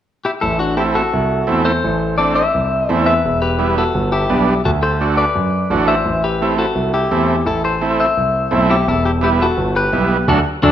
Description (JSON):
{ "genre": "latin", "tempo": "170 BPM", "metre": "4/4", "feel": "straight", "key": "A dorian", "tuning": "A4 = 440 Hz", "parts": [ { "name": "clean electric guitar", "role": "melody", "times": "0.2-10.7 s", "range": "D4 to E5", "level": "-17 LUFS", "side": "left 3 dB", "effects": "spring reverb" }, { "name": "dark concert grand piano", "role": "bass", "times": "0.4-10.7 s", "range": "E1 to F#2", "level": "-19 LUFS", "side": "right 1 dB", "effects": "none" }, { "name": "overdriven combo organ", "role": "accompaniment", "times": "0.8-10.7 s", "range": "F#3 to F#4", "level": "-19 LUFS", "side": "right 4 dB", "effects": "none" }, { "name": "brilliant trombone", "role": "second line", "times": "10.6-10.7 s", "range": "D4", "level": "-13 LUFS", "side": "left 4 dB", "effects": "none" } ], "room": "moderate large studio reverb, RT60 1.3 s", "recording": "minimal, uncompressed stereo recording", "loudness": "-14 LUFS", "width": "side -10 dB against mid", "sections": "0.4-10.7 A section", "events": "band accent 10.3-10.7", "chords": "0.4 Am; 3.2 Em; 4.6 D; 6.1 Am; 8.9 Em" }